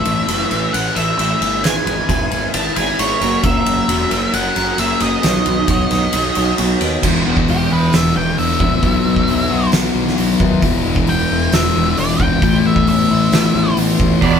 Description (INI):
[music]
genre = quiet-loud alternative rock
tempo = 133 BPM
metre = 4/4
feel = straight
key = E major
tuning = A4 = 440 Hz
[part]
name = octave-fuzz lead guitar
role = melody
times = 0.0-14.4 s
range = G4 to A5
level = -20 LUFS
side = equal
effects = distortion
[part]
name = electric guitar through a small old amp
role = arpeggios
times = 0.0-14.2 s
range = E2 to C#5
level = -21 LUFS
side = right 1 dB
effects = phaser
[part]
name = fuzz picked electric bass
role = bass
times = 0.1-14.4 s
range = E1 to D#2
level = -21 LUFS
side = right 1 dB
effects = overdrive
[part]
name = oversized low-tuned drum kit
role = drums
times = 0.1-14.3 s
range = crash cymbal, hi-hat, kick drum, ride cymbal, snare drum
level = -19 LUFS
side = right 1 dB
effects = none
[part]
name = thick fuzz guitar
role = riff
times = 7.0-14.4 s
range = E2 to B3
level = -17 LUFS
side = left 5 dB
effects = distortion
[part]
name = overdriven electric guitar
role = riff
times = 14.2-14.4 s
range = E2 to E3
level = -12 LUFS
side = right 8 dB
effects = none
[sound]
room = moderate studio reverb, RT60 0.6 s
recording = band playing live in one room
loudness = -13 LUFS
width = side -7 dB against mid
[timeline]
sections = 0.0-7.0 A section; 7.0-14.4 B section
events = half time 0.0-7.0; lead electric guitar solo 7.0-14.4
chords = 0.0 Asus2; 1.6 E/G#; 3.2 F#; 5.2 Badd9; 7.0 E; 8.8 Bsus4; 10.6 E; 12.4 Aadd9